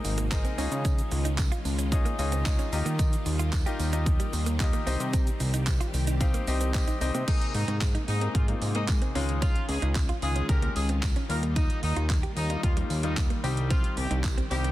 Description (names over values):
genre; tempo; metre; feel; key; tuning
dance-pop; 112 BPM; 4/4; straight; Ab major; A4 = 438 Hz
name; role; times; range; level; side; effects
clear concert grand piano; accompaniment; 0.0-14.7 s; G3 to F5; -35 LUFS; left 4 dB; sidechain pumping
string machine, violas; sustained chords; 0.0-14.7 s; C3 to G4; -37 LUFS; equal; ensemble chorus, sidechain pumping
direct-recorded clean electric guitar; riff; 0.0-14.7 s; G3 to G4; -38 LUFS; right 7 dB; wide subtle chorus
fat analog bass; bass; 0.0-14.7 s; Ab1 to Eb3; -28 LUFS; equal; sidechain pumping
pop drum kit; drums; 0.0-14.7 s; crash cymbal, handclaps, hi-hat, kick drum, shaker; -27 LUFS; equal; soft clipping on snare
tambourine; percussion; 0.0-14.6 s; none; -45 LUFS; right 8 dB; none
warm horn section; melody; 7.3-14.7 s; Eb4 to Bb4; -35 LUFS; left 1 dB; sidechain pumping, tape echo
room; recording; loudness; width
digital ambience; dense, heavily limited modern master; -24 LUFS; side -15 dB against mid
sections
0.0-7.3 A section; 7.3-14.7 B section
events
none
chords
0.0 Abadd9; 0.6 Dbadd9; 2.7 Ebadd9; 4.9 Cm; 7.3 Abadd9; 9.2 Dbadd9; 11.3 Ebadd9; 13.4 Cm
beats
0.31 | 0.85 1.39 1.92 2.46 | 2.99 3.53 4.06 4.60 | 5.13 5.67 6.21 6.74 | 7.28 7.81 8.35 8.88 | 9.42 9.96 10.49 11.03 | 11.56 12.10 12.63 13.17 | 13.71 14.24